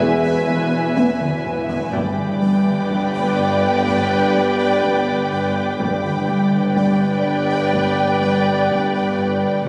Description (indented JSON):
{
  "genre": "cinematic, suspense film score",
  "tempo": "62 BPM",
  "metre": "4/4",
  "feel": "straight",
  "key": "unclear",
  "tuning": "A4 = 441 Hz",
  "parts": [
    { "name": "muted symphonic violin section", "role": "melody", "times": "0.0-9.6 s", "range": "G5 to G#5", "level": "-28 LUFS", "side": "equal", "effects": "none" },
    { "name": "muted symphonic violin section", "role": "second line", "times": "0.0-9.7 s", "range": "D5 to E5", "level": "-28 LUFS", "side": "equal", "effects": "none" },
    { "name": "muted symphonic viola section", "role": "accompaniment", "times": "0.0-9.7 s", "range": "B4", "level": "-30 LUFS", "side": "equal", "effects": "none" },
    { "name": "mellow French horn section", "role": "sustained chords", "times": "0.0-9.7 s", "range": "B3 to G#4", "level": "-27 LUFS", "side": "equal", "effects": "none" },
    { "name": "pulsing gated texture", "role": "sustained chords", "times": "0.0-9.7 s", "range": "B4 to G#5", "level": "-30 LUFS", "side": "equal", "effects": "chorus, built-in reverb" },
    { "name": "round analog bass", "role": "riff", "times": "0.0-9.7 s", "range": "E2 to G3", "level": "-26 LUFS", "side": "equal", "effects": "none" },
    { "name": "muted symphonic cello section", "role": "bass", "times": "0.0-9.6 s", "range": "E2 to G2", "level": "-27 LUFS", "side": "equal", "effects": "none" },
    { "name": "muted symphonic double bass section", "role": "bass", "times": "0.0-9.6 s", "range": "E1 to G1", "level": "-29 LUFS", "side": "equal", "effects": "none" },
    { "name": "bowed-like drone", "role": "drone", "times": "0.1-9.7 s", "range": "G1 to E2", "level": "-32 LUFS", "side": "equal", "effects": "none" },
    { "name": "solo taiko drums", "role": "drums", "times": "0.0-9.7 s", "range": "none", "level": "-28 LUFS", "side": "equal", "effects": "none" },
    { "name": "muted symphonic violin section", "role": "texture", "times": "0.0-9.1 s", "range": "G5 to B6", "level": "-32 LUFS", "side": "equal", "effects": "none" }
  ],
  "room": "moderate scoring stage reverb, RT60 2.0 s",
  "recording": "recorded on a phone in the room, club reverb, compression",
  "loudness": "-18 LUFS",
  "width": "mono",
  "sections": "0.0-9.7 A section",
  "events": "drum fill 1.0-1.9",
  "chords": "0.0 E; 1.9 G"
}